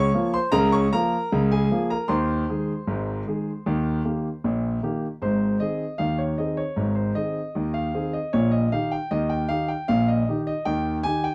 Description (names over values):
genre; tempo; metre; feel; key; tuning
ragtime piano; 77 BPM; 2/4; straight; Ab major; A4 = 439 Hz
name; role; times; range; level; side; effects
warm concert grand piano; solo; 0.0-11.3 s; Ab1 to Db6; -24 LUFS; equal; none
room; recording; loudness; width
light reverb; dry, close 1970s-style studio recording; -24 LUFS; mono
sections
0.0-5.2 A section; 5.2-11.3 B section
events
none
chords
0.0 Bbm/Db; 2.1 Ab/Eb; 3.7 Eb; 5.2 Ab; 8.3 Eb/Bb